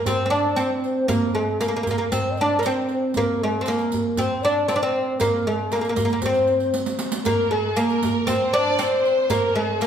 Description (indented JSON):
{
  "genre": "Arabic maqam ensemble",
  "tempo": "117 BPM",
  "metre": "4/4",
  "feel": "straight",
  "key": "unclear",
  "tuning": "A4 = 440 Hz",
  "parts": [
    { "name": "breathy mellow low ney", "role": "second line", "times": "0.0-9.9 s", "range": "Ab4+46c to Eb5", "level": "-25 LUFS", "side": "left 2 dB", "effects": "none" },
    { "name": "oud", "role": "melody", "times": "0.1-9.9 s", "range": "Ab3+50c to D4", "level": "-22 LUFS", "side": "right 1 dB", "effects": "none" },
    { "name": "darbuka", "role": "percussion", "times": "0.1-9.9 s", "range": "none", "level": "-30 LUFS", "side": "right 1 dB", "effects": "none" },
    { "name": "riq", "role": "percussion", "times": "0.1-9.9 s", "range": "none", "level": "-33 LUFS", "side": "right 3 dB", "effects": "none" },
    { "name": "rich symphonic violin section", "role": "second line", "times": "7.3-9.9 s", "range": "Ab4+50c to D5", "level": "-27 LUFS", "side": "right 1 dB", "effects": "none" }
  ],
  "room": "wet recital hall reverb, RT60 1.5 s",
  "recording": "recorded in a church or concert hall",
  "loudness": "-19 LUFS",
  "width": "side -8 dB against mid",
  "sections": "0.0-9.9 A section",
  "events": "drum fill 6.7-7.3",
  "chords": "none",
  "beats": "0.07 0.58 | 1.09 1.61 2.12 2.64 | 3.15 3.66 4.18 4.69 | 5.20 5.72 6.23 6.75 | 7.26 7.77 8.28 8.80 | 9.31 9.82"
}